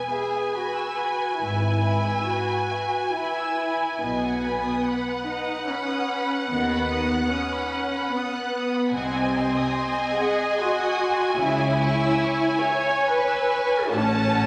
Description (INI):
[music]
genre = classical, slow romantic movement for string orchestra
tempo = 69-74 BPM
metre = 3/4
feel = rubato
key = E major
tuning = A4 = 438 Hz
[part]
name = rich symphonic violin section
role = melody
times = 0.0-14.5 s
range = F#5 to A5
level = -30 LUFS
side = equal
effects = none
[part]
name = rich chamber violin section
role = second line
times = 0.0-14.5 s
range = B4 to F#6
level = -32 LUFS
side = equal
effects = none
[part]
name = rich chamber viola section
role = accompaniment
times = 0.0-14.5 s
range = B3 to C#5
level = -28 LUFS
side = equal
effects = none
[part]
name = rich chamber cello section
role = bass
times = 1.4-14.5 s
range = G#2 to D#3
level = -32 LUFS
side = equal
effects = none
[part]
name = rich chamber double bass section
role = bass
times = 1.4-14.5 s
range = G#1 to D#2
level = -35 LUFS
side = equal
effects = none
[sound]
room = wet scoring stage reverb, RT60 2.1 s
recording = none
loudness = -24 LUFS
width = mono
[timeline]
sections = 0.0-14.5 A section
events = none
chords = 0.0 E; 1.4 E/G#; 4.0 B; 6.5 B/D#; 8.9 G#7/B#; 11.4 C#m; 13.9 F#m/A